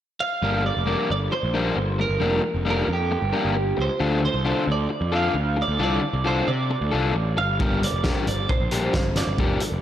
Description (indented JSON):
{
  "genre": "indie rock",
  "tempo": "134 BPM",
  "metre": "4/4",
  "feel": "straight",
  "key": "G minor",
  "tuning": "A4 = 439 Hz",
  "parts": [
    { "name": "twelve-string electric guitar", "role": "melody", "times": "0.2-9.6 s", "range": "G4 to F5", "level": "-26 LUFS", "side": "right 3 dB", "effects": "analog delay" },
    { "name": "crunchy overdriven guitar", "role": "riff", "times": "0.4-9.7 s", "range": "D3 to Bb4", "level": "-26 LUFS", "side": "left 4 dB", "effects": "slapback echo" },
    { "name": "fuzz picked electric bass", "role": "bass", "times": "0.4-9.8 s", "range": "F1 to C3", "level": "-25 LUFS", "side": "equal", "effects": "overdrive" },
    { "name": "loose indie drum kit", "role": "drums", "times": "7.6-9.7 s", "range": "hi-hat, kick drum, snare drum", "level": "-24 LUFS", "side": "equal", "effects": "none" }
  ],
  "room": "moderate lush hall reverb, RT60 1.9 s",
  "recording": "big arena sound",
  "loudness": "-20 LUFS",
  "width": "side -11 dB against mid",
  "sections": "0.4-9.8 A section",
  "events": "none",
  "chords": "0.4 Gm7; 4.0 Dm7; 7.6 Gm7"
}